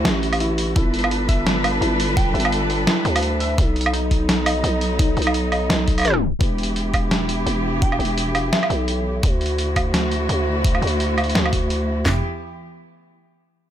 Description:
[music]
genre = half-time drum and bass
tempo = 170 BPM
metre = 4/4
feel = swing 58% on 16ths, half-time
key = E minor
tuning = A4 = 444 Hz
[part]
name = warm studio cello section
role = sustained chords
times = 0.0-12.2 s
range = D3 to B4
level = -26 LUFS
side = equal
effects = sidechain pumping
[part]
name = warbly dusty pluck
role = arpeggios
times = 0.0-6.2 s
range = D#4 to E5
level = -28 LUFS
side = left 2 dB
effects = chorus, digital delay
[part]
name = growling 808-style bass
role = bass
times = 0.0-12.2 s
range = E1 to D2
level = -22 LUFS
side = equal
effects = none
[part]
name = boom bap sampler-style drum kit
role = drums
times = 0.1-11.8 s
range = hi-hat, snare drum, woodblock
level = -23 LUFS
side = right 1 dB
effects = none
[part]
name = drum and bass drum kit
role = drums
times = 0.8-12.2 s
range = handclaps, kick drum, snare drum, toms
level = -20 LUFS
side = equal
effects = overdrive
[part]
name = soft synth bell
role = melody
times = 2.2-2.4, 7.8-8.7 s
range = E5 to G5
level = -30 LUFS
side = right 2 dB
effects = chorus, phaser, vintage 12-bit sampler grit, ping-pong delay
[sound]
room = light reverb, digital ambience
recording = tape stop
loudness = -18 LUFS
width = side -10 dB against mid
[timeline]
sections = 0.0-6.4 A section; 6.4-12.1 B section; 12.1-13.5 C section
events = drop 0.0-6.4; tape stop 6.1-6.4; filter sweep on 808-style bass 6.4-12.1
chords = 0.0 D; 0.8 G; 3.6 B; 6.4 Em; 9.2 D; 12.1 Em

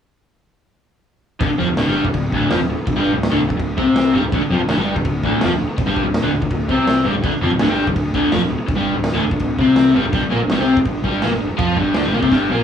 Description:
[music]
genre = garage rock duo or trio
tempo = 165 BPM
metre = 4/4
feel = straight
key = D minor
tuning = A4 = 441 Hz
[part]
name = crunchy overdriven guitar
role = riff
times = 1.4-12.6 s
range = D2 to F4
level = -16 LUFS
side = left 1 dB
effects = none
[part]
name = fuzz fingered electric bass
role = bass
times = 1.4-12.6 s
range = D1 to F2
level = -25 LUFS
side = equal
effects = overdrive
[part]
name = raw garage drum kit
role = drums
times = 1.4-12.4 s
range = crash cymbal, kick drum, snare drum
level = -22 LUFS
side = equal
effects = none
[sound]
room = moderate studio ambience, RT60 0.5 s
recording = small room ambience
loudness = -15 LUFS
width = side -8 dB against mid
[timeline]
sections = 1.4-12.6 A section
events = drum fill 12.3-12.6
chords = 1.4 Dm; 10.1 G5

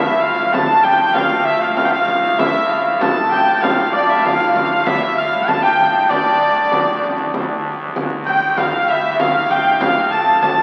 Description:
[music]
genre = medieval dance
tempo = 97 BPM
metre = 2/4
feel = straight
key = D minor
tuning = A4 = 439 Hz
[part]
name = dark hurdy-gurdy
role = melody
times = 0.0-10.6 s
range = D5 to A5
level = -20 LUFS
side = equal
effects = none
[part]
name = edgy shawm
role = second line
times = 0.0-10.6 s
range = D5 to A5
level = -22 LUFS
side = equal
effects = none
[part]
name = hammered dulcimer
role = second line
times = 0.0-10.6 s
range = D4 to A4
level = -23 LUFS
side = equal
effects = none
[part]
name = pipe organ, clarinet reed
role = drone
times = 0.0-10.6 s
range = D2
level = -29 LUFS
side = equal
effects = none
[part]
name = frame drum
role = percussion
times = 0.5-10.6 s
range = none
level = -24 LUFS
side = equal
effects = none
[sound]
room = wet cathedral reverb, RT60 5.5 s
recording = very old 78 rpm record, vinyl crackle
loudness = -16 LUFS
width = mono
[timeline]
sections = 0.0-7.3 A section; 7.3-10.6 B section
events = none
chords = none

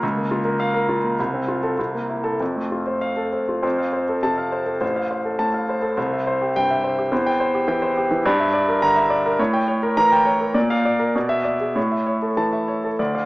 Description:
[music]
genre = classical, virtuoso piano study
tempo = 95-107 BPM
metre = 2/4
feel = rubato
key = F major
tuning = A4 = 441 Hz
[part]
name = warm concert grand piano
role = solo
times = 0.0-13.3 s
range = A1 to Bb5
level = -18 LUFS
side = equal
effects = none
[sound]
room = wet recital hall reverb, RT60 1.5 s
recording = small speaker sound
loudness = -18 LUFS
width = side -20 dB against mid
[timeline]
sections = 0.0-3.6 A section; 3.6-13.0 B section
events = none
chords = 0.0 Bbm/Db; 1.2 F/C; 1.8 C6; 2.4 F; 4.8 F/A; 6.0 C; 7.1 C/E; 8.2 Em7b5/G; 9.4 A7b9; 10.6 Bb; 11.1 E7/B; 11.8 A

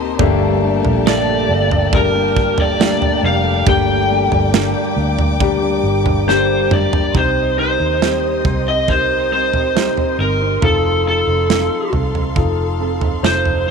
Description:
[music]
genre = pop ballad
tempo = 69 BPM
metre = 4/4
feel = straight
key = G minor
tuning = A4 = 439 Hz
[part]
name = warm baby grand piano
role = accompaniment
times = 0.0-13.7 s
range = G2 to C5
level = -20 LUFS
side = left 14 dB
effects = none
[part]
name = warm studio string section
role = sustained chords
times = 0.0-13.7 s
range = G4 to Eb6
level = -26 LUFS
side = left 1 dB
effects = none
[part]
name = vintage muted fingered electric bass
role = bass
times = 0.0-13.7 s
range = F1 to Eb2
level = -21 LUFS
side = equal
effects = none
[part]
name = mellow French horn section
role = second line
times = 0.2-6.7 s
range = G3 to A4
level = -26 LUFS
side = right 11 dB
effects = none
[part]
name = flamenco guitar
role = arpeggios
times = 0.2-13.7 s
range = G2 to A4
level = -24 LUFS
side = right 13 dB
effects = none
[part]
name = modern studio drum kit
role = drums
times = 0.2-13.7 s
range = kick drum, snare drum, toms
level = -19 LUFS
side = right 3 dB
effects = none
[part]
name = lead guitar through a small cranked amp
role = melody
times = 1.1-13.7 s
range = A4 to G5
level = -18 LUFS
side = right 1 dB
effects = overdrive
[sound]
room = light reverb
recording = 1960s-style stereo with parts hard left and right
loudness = -13 LUFS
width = side -5 dB against mid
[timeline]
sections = 0.0-7.1 A section; 7.1-13.7 B section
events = drum fill 6.3-7.1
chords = 0.2 Gmadd9; 3.7 Gm; 7.1 Cm; 10.6 F7

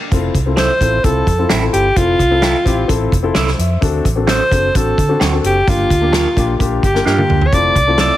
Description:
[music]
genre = uptempo 1960s-style soul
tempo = 129 BPM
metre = 4/4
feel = straight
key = F major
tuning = A4 = 440 Hz
[part]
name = warm concert grand piano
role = accompaniment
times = 0.1-8.1 s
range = A3 to E5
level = -20 LUFS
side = left 5 dB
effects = none
[part]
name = vintage muted fingered electric bass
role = bass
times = 0.1-8.1 s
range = F1 to D3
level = -18 LUFS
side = right 1 dB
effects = tube saturation
[part]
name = natural country drum kit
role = drums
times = 0.1-8.1 s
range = hi-hat, kick drum, snare drum, toms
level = -18 LUFS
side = equal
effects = none
[part]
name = bright alto saxophone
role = melody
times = 0.6-8.2 s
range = F4 to D5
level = -16 LUFS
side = equal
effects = none
[part]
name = electric guitar through a small old amp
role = stabs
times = 0.6-8.1 s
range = C4 to Bb4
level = -22 LUFS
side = right 6 dB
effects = phaser
[sound]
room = light reverb, small room ambience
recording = heavily compressed radio sound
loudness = -12 LUFS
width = side -14 dB against mid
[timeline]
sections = 0.1-8.2 A section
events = drum fill 7.1-7.5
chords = 0.1 Fmaj7; 3.8 D7; 5.7 Gm7; 7.5 Fmaj7

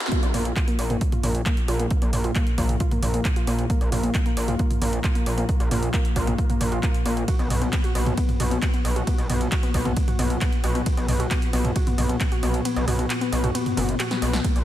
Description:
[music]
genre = driving peak-time techno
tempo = 134 BPM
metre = 4/4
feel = straight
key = unclear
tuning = A4 = 440 Hz
[part]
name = warbly dusty pluck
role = riff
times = 0.0-14.5 s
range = Bb3 to F#4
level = -28 LUFS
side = left 2 dB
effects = chorus, sidechain pumping, ping-pong delay
[part]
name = gritty driven synth bass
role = bass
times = 0.0-14.6 s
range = F#1 to B1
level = -25 LUFS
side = equal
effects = sidechain pumping, high-pass filter
[part]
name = metallic inharmonic drone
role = drone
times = 0.1-14.6 s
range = Bb2 to F3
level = -31 LUFS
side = left 2 dB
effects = chorus, built-in reverb, sidechain pumping
[part]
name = punchy analog drum machine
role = drums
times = 0.0-14.6 s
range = handclaps, hi-hat, ride cymbal, snare drum, toms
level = -29 LUFS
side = right 1 dB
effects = overdrive
[part]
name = electronic kick drum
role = drums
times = 0.1-14.5 s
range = none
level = -24 LUFS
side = equal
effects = overdrive, high-pass filter on kick
[sound]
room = light reverb, digital ambience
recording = high-pass filter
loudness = -20 LUFS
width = side -13 dB against mid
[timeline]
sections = 0.1-14.6 A section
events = drop 0.1-14.6; kick drops out 12.7-14.4; drum fill 14.1-14.4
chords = 0.1 Bb5; 7.3 B5

